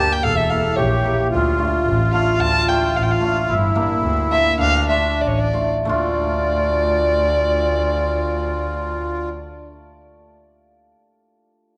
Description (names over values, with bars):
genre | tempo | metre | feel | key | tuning
klezmer | 84-112 BPM | 2/4 | straight | D minor | A4 = 440 Hz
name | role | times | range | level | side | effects
dark violin | melody | 0.0-9.3 s | C#5 to A5 | -23 LUFS | equal | tape echo
accordion | second line | 0.0-9.3 s | D4 to A4 | -25 LUFS | equal | light tremolo tuning
cimbalom | accompaniment | 0.0-10.3 s | A3 to Bb4 | -28 LUFS | equal | none
clear double bass | bass | 0.2-9.3 s | E1 to D2 | -24 LUFS | equal | none
room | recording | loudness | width
moderate echo chamber reverb, RT60 1.6 s, studio ambience | none | -19 LUFS | mono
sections
0.0-5.9 A section; 5.9-8.7 B section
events
slowing down 3.5-5.9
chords
0.2 Edim; 1.3 Dm; 3.5 Gm; 4.6 Dm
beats
| 0.24 0.78 | 1.32 1.86 | 2.40 2.94 | 3.48 4.02 | 4.59 5.20 | 5.87 6.58 | 7.29 8.00